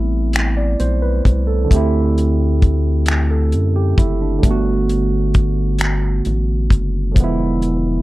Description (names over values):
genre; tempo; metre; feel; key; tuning
slow six-eight R&B; 44 BPM (dotted quarters); 6/8; straight; G major; A4 = 440 Hz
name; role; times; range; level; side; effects
barky tine electric piano; accompaniment; 0.0-8.0 s; D3 to D5; -19 LUFS; right 2 dB; overdrive, wide subtle chorus
rubbery square bass; bass; 0.0-8.0 s; E1 to F#2; -17 LUFS; equal; none
cloth-damped thuddy drum kit; drums; 0.3-7.8 s; finger snaps, hi-hat, kick drum; -15 LUFS; equal; none
room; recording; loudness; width
little or no reverb; dry, close 1970s-style studio recording; -14 LUFS; side -18 dB against mid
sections
0.0-8.0 A section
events
none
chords
0.0 Am9; 1.7 D9sus4; 4.4 Gmaj9; 7.2 E7b9